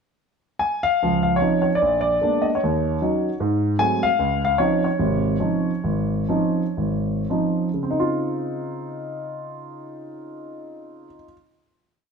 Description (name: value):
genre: solo jazz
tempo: 104-153 BPM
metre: 4/4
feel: swing 64% on 8ths, rubato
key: Db major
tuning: A4 = 440 Hz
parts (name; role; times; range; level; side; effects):
- warm grand piano; solo; 0.6-11.3 s; Ab1 to Ab5; -20 LUFS; equal; none
room: moderate large studio reverb, RT60 1.1 s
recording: band playing live in one room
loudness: -19 LUFS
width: side -5 dB against mid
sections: 0.0-1.0 pickup bar; 1.0-7.9 A section; 7.9-12.1 final chord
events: slowing down 4.2-7.9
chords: 0.0 N.C.; 1.0 Dbmaj9; 1.8 Bb7b9; 2.6 Ebm7; 3.4 Ab7b9; 4.2 Dbmaj9